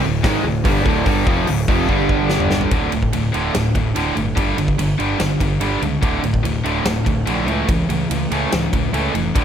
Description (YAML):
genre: hard rock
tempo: 145 BPM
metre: 4/4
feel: straight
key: unclear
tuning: A4 = 442 Hz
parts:
  - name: cranked stack guitar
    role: riff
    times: 0.0-9.4 s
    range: D2 to A3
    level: -22 LUFS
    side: right 8 dB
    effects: overdrive
  - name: overdriven semi-hollow guitar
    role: riff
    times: 0.0-2.7 s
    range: D2 to G#3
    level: -23 LUFS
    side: left 1 dB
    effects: none
  - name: scooped high-gain guitar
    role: riff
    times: 0.0-9.4 s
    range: D2 to A3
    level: -22 LUFS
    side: left 8 dB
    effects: distortion
  - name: fuzz picked electric bass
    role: bass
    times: 0.0-9.4 s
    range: D1 to C#2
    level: -23 LUFS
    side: equal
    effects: overdrive
  - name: big rock drum kit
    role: drums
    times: 0.2-9.4 s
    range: hi-hat, kick drum, ride cymbal, snare drum, toms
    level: -22 LUFS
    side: equal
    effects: none
room: light reverb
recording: none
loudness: -16 LUFS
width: side -8 dB against mid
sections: 0.0-2.7 A section; 2.7-9.4 B section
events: drum fill 1.9-2.7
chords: 0.0 Dm; 1.9 G5; 2.7 D5; 4.4 G5; 6.0 D5; 7.5 A/C#